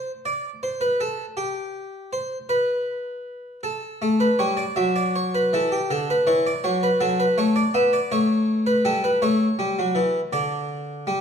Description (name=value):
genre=classical, baroque-style two-part invention for harpsichord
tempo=53 BPM (dotted quarters)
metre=12/8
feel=straight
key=unclear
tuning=A4 = 437 Hz
part: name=harpsichord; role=solo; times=0.0-11.2 s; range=D3 to E5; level=-20 LUFS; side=equal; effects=none
room=wet recital hall reverb, RT60 1.3 s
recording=dark, warm production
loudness=-20 LUFS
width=side -7 dB against mid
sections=0.0-11.2 A section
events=none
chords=0.0 N.C.; 3.6 D; 8.1 A7; 10.3 N.C.